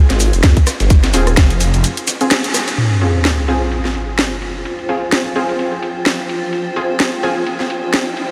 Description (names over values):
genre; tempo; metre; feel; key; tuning
bass house; 128 BPM; 4/4; swing 57% on 16ths; F minor; A4 = 440 Hz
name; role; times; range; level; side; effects
phased detuned saw bass; bass; 0.1-1.8 s; Eb1 to F2; -17 LUFS; equal; phaser, tube saturation, sidechain pumping
dusty soul sampler-style drum kit; drums; 0.1-8.3 s; hi-hat, ride cymbal, snare drum; -32 LUFS; equal; none
garage drum kit; drums; 0.1-8.0 s; hi-hat, rim click, shaker, snare drum; -21 LUFS; equal; overdrive
electronic kick drum; drums; 0.4-1.5 s; none; -12 LUFS; equal; overdrive
orchestra-hit-like synth stab; stabs; 1.1-7.4 s; C4 to Ab4; -24 LUFS; equal; built-in reverb, sidechain pumping, delay
sub drop and riser; sound effects; 2.8-8.3 s; none; -22 LUFS; equal; none
granular cloud pad; texture; 3.8-8.3 s; F4 to G5; -26 LUFS; equal; built-in reverb, sidechain pumping
room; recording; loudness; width
moderate huge ambient reverb, RT60 4.9 s; dreamy mix soaked in reverb; -16 LUFS; mono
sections
0.0-2.8 A section; 2.8-8.3 B section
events
break 1.8-2.8; band accent 2.3; impact 2.8-4.7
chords
0.0 Fm